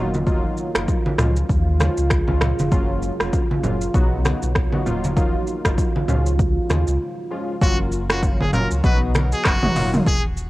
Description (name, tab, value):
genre	afrobeats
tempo	98 BPM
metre	4/4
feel	swing 58% on 16ths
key	F# major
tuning	A4 = 440 Hz
part	warm analog keys	accompaniment	0.0-10.0 s	E#3 to F#4	-26 LUFS	left 1 dB	chorus
part	deep dark ambient pad	sustained chords	0.0-7.6 s	C#3 to F#4	-28 LUFS	right 2 dB	chorus, built-in reverb
part	sub bass with octave	bass	0.0-10.5 s	D#1 to D#2	-22 LUFS	equal	none
part	deep house drum kit	drums	0.1-10.5 s	finger snaps, handclaps, hi-hat, kick drum, rim click, shaker, toms	-21 LUFS	equal	overdrive, cassette tape
part	congas	percussion	0.1-10.1 s	none	-24 LUFS	right 1 dB	none
part	brilliant trumpet	melody	7.6-10.2 s	F#4 to B4	-25 LUFS	equal	cassette tape
room	little or no reverb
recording	home recording on cassette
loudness	-18 LUFS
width	side -18 dB against mid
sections	0.0-7.6 A section; 7.6-10.5 B section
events	break 7.0-7.6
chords	0.0 D#madd9; 1.2 C#; 2.7 F#maj7; 3.9 B; 4.9 D#madd9; 6.1 C#; 7.6 F#maj7; 8.8 B; 9.8 D#madd9